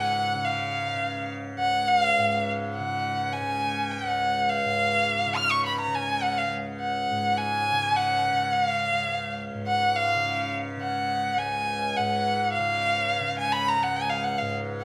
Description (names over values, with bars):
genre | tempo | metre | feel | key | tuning
indian classical | 104 BPM | 7/4 | straight | unclear | A4 = 440 Hz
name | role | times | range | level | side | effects
rich violin | melody | 0.0-14.8 s | F5 to F6 | -26 LUFS | equal | none
tanpura | drone | 0.0-14.8 s | Db2 to Db3 | -35 LUFS | equal | none
room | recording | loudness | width
wet recital hall reverb, RT60 1.6 s | none | -26 LUFS | mono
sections
0.0-14.8 A section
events
none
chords
none